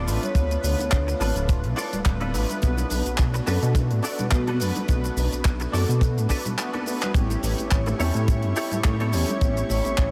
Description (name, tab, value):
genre	nu-disco, nu disco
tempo	106 BPM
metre	4/4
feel	swing 55% on 16ths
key	unclear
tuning	A4 = 439 Hz
part	direct-recorded clean electric guitar	riff	0.0-9.6 s	D4 to D5	-36 LUFS	equal	ensemble chorus, analog delay
part	chorused synth bass	bass	0.0-10.1 s	D1 to B2	-27 LUFS	equal	none
part	mellow synth brass	accompaniment	0.1-10.1 s	A3 to C#5	-34 LUFS	equal	chorus, analog delay
part	tight funk drum kit	drums	0.1-10.1 s	handclaps, hi-hat, shaker	-34 LUFS	equal	none
part	maracas, bongos and congas	percussion	0.1-10.1 s	none	-36 LUFS	equal	none
part	vibraphone with soft mallets	melody	0.2-10.1 s	F#4 to C#5	-36 LUFS	equal	vintage 12-bit sampler grit, tape echo
part	kick drum	drums	0.3-10.1 s	none	-24 LUFS	equal	none
part	lush unison pad	sustained chords	7.4-10.1 s	E4 to C#6	-37 LUFS	equal	chorus, phaser, sidechain pumping
part	soft round pluck	arpeggios	7.1-10.1 s	G3 to E4	-39 LUFS	equal	none
room	light reverb, small room ambience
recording	none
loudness	-24 LUFS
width	mono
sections	0.0-10.1 A section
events	break 6.6-7.1; drum fill 6.6-7.1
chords	0.0 Dm6; 2.6 Bm7; 7.1 A7